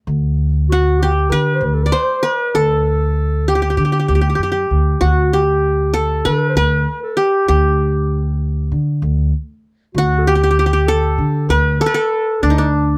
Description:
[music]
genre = turkish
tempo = 97 BPM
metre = 4/4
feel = straight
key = D makam hicaz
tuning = A4 = 440 Hz
[part]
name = upright bass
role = bass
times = 0.1-13.0 s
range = D2 to D3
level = -18 LUFS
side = equal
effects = none
[part]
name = qanun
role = melody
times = 0.7-13.0 s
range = D4 to D5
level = -20 LUFS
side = equal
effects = none
[part]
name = mellow clarinet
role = second line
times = 0.7-13.0 s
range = D4 to C5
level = -25 LUFS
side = equal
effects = none
[sound]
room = little or no reverb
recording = none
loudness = -16 LUFS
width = mono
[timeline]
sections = 0.0-13.0 A section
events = none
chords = none

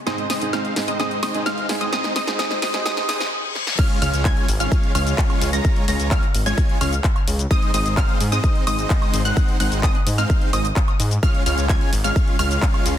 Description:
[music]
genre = EDM, festival progressive house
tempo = 129 BPM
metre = 4/4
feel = straight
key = Db major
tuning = A4 = 440 Hz
[part]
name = riser and reverse cymbal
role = sound effects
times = 0.0-3.8 s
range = none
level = -32 LUFS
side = left 4 dB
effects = none
[part]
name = bright baby grand piano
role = accompaniment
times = 0.1-3.2 s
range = Ab2 to Ab4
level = -28 LUFS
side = right 3 dB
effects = vintage 12-bit sampler grit, sidechain pumping, ping-pong delay
[part]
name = wide unison pluck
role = arpeggios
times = 0.1-12.9 s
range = Eb6 to Bb6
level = -27 LUFS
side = equal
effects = sidechain pumping, ping-pong delay
[part]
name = dense compressed supersaw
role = riff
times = 0.1-12.9 s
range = Ab3 to Bb5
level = -25 LUFS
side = equal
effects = sidechain pumping, ping-pong delay
[part]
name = big-room dance drum kit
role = drums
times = 0.1-13.0 s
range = crash cymbal, handclaps, hi-hat, shaker, snare drum, woodblock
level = -27 LUFS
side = left 1 dB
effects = none
[part]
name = electronic kick drum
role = drums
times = 3.8-12.7 s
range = none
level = -19 LUFS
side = equal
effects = none
[part]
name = detuned saw bass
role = bass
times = 4.0-13.0 s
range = Ab1 to Ab2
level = -22 LUFS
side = equal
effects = tube saturation, sidechain pumping
[sound]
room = light reverb, digital ambience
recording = dense, heavily limited modern master, high-pass filter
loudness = -17 LUFS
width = side -10 dB against mid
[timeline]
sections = 0.0-3.8 A section; 3.8-13.0 B section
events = build-up 0.0-3.8; drum fill 0.0-3.3, 3.6; filter sweep 0.0-3.8; reverse cymbal 2.9-3.8; drop 3.8-13.0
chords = 0.1 Ab; 3.8 Db; 7.5 Ab; 11.2 Db

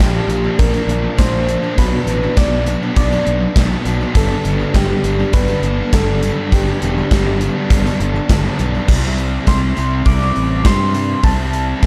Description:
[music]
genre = rock, shoegaze and dream pop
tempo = 102 BPM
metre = 4/4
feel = straight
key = C lydian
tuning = A4 = 439 Hz
[part]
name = soft struck synth lead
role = melody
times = 0.0-11.9 s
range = G4 to D6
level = -24 LUFS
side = equal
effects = chorus, slapback echo
[part]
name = crunchy overdriven guitar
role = riff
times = 0.0-11.9 s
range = G2 to E4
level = -27 LUFS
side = equal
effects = reverse reverb
[part]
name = crunchy overdriven guitar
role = riff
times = 0.0-8.9 s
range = G2 to D4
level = -27 LUFS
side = equal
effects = none
[part]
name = thick fuzz guitar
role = riff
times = 0.0-11.9 s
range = G2 to C4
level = -24 LUFS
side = equal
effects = distortion, lush chorus
[part]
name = fuzz fingered electric bass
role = bass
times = 0.0-11.9 s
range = E1 to G2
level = -22 LUFS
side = equal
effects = overdrive
[part]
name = gated 80s drum kit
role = drums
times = 0.0-11.9 s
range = crash cymbal, hi-hat, kick drum, snare drum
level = -18 LUFS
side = equal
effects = none
[part]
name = tambourine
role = percussion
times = 0.1-11.9 s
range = none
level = -42 LUFS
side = equal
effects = none
[sound]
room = light reverb, studio ambience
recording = dark, warm production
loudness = -16 LUFS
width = mono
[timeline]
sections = 0.0-8.9 A section; 8.9-11.9 B section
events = none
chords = 0.0 Bb6; 1.8 Bm; 4.2 G; 8.9 C

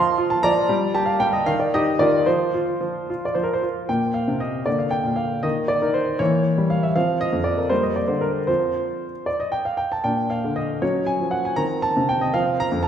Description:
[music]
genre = classical-period piano sonatina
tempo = 78 BPM (dotted quarters)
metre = 6/8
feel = rubato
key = unclear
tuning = A4 = 440 Hz
[part]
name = clear grand piano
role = solo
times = 0.0-12.9 s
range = F2 to C6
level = -19 LUFS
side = equal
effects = none
[sound]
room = wet recital hall reverb, RT60 1.8 s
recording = heard from further back in the room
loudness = -19 LUFS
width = side -9 dB against mid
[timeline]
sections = 0.0-3.9 A section; 3.9-12.9 B section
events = none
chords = 0.0 F5; 0.7 G5; 1.5 Eb; 2.3 N.C.; 3.9 Eb69/Bb; 4.7 Bb/D; 5.4 Eb5; 6.2 Edim7; 7.0 F5; 7.7 Gm; 8.5 F5; 10.1 Bb; 10.8 Gb5; 11.6 Cm7; 12.3 F5

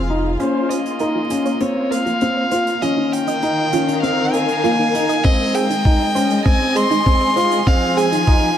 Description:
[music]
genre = piano and strings electronica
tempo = 99 BPM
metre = 4/4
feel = straight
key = unclear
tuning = A4 = 440 Hz
[part]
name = rich violin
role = melody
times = 0.0-8.6 s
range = C5 to C6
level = -20 LUFS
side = left 1 dB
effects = low-pass filter
[part]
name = dark symphonic string section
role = sustained chords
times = 0.0-8.6 s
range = Eb3 to F5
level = -22 LUFS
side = left 1 dB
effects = sidechain pumping, low-pass filter
[part]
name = felt-muted upright piano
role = riff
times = 0.1-8.5 s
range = Bb3 to F4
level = -20 LUFS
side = left 1 dB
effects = tape echo
[part]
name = hi-hat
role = drums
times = 0.4-8.4 s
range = none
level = -34 LUFS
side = right 5 dB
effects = none
[part]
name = soft round pluck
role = arpeggios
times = 0.5-8.3 s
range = Eb4 to Eb5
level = -26 LUFS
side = right 5 dB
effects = chorus, sidechain pumping, tape echo
[part]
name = electronic kick drum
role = drums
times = 5.2-8.4 s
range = none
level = -15 LUFS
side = equal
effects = none
[sound]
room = moderate huge ambient reverb, RT60 5.9 s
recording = none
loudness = -15 LUFS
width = side -10 dB against mid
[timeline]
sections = 0.4-8.6 A section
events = build-up 0.4-8.6; filter sweep on string section 0.4-8.6; filter sweep on synth arpeggio sound 0.4-8.6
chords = 0.4 Bbmadd9; 2.8 Ebsus2; 5.2 Ab; 7.7 Fm

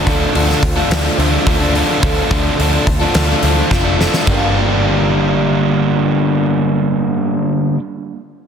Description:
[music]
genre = rock, shoegaze and dream pop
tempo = 107 BPM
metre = 4/4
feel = straight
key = G minor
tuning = A4 = 440 Hz
[part]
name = fingerpicked twelve-string acoustic guitar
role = arpeggios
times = 0.0-7.8 s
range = F3 to F4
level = -28 LUFS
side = right 4 dB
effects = none
[part]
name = overdriven electric guitar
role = riff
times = 0.0-7.8 s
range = G2 to D4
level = -17 LUFS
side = right 10 dB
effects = reverse reverb
[part]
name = overdriven semi-hollow guitar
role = riff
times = 0.0-7.8 s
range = G2 to A4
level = -18 LUFS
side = left 11 dB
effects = lush chorus
[part]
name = vintage muted picked electric bass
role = bass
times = 0.1-7.4 s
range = F1 to D2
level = -19 LUFS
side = equal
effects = none
[part]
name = huge arena drum kit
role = drums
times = 0.1-4.4 s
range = crash cymbal, hi-hat, kick drum, snare drum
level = -18 LUFS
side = equal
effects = none
[sound]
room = light reverb, small room reverb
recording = dense, heavily limited modern master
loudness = -12 LUFS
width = side -7 dB against mid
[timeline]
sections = 0.0-4.3 A section; 4.3-6.5 B section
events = drum fill 3.7-4.3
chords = 0.0 Dm7; 4.3 Gm7

